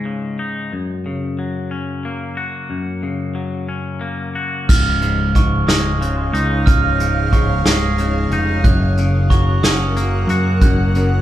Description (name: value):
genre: post-rock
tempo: 61 BPM (dotted quarters)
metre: 6/8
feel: straight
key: Db major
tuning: A4 = 440 Hz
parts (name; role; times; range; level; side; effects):
- twangy electric guitar; arpeggios; 0.0-11.2 s; Db2 to Gb4; -21 LUFS; left 2 dB; none
- ethereal airy pad; sustained chords; 5.4-11.2 s; Db4 to Gb5; -27 LUFS; equal; ensemble chorus, built-in reverb, phaser
- glockenspiel with hard plastic mallets; arpeggios; 4.7-11.2 s; Db6 to Gb6; -23 LUFS; right 6 dB; none
- growling fingered electric bass; bass; 4.7-11.2 s; Db1 to Gb2; -18 LUFS; equal; overdrive
- vintage brush drum kit; drums; 4.7-11.1 s; crash cymbal, hi-hat, kick drum, snare drum; -16 LUFS; equal; none
room: moderate recital hall reverb, RT60 1.5 s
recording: recorded in a church or concert hall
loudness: -15 LUFS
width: side -13 dB against mid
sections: 0.0-4.7 A section; 4.7-11.2 B section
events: none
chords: 0.0 Dbsus2; 0.7 Gb; 4.7 Dbadd9; 8.6 Gb